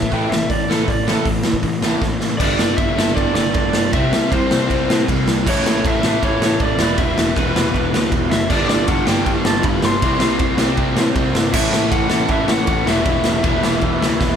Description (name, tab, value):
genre	punk rock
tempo	158 BPM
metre	4/4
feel	straight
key	unclear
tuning	A4 = 440 Hz
part	lead guitar through a small cranked amp	melody	0.0-14.4 s	A4 to C6	-23 LUFS	left 1 dB	overdrive
part	crunchy overdriven guitar	riff	0.0-14.4 s	G2 to E4	-23 LUFS	left 7 dB	none
part	raw garage guitar	riff	0.0-14.4 s	E2 to C4	-24 LUFS	right 7 dB	overdrive
part	fuzz picked electric bass	bass	0.0-14.4 s	E1 to A2	-24 LUFS	right 1 dB	overdrive
part	raw garage drum kit	drums	0.0-14.3 s	crash cymbal, hi-hat, kick drum, ride cymbal, snare drum	-18 LUFS	equal	none
part	distorted electric guitar	riff	8.5-14.4 s	E2 to C4	-27 LUFS	equal	distortion
room	light reverb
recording	band playing live in one room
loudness	-15 LUFS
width	side -8 dB against mid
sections	0.0-2.4 A section; 2.4-14.4 B section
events	lead electric guitar solo 0.0-2.4; drum fill 2.0-2.4, 14.2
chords	0.0 A5; 2.4 G; 3.9 C; 5.5 A; 6.8 Em; 8.5 G; 10.0 C; 11.5 A; 12.9 Em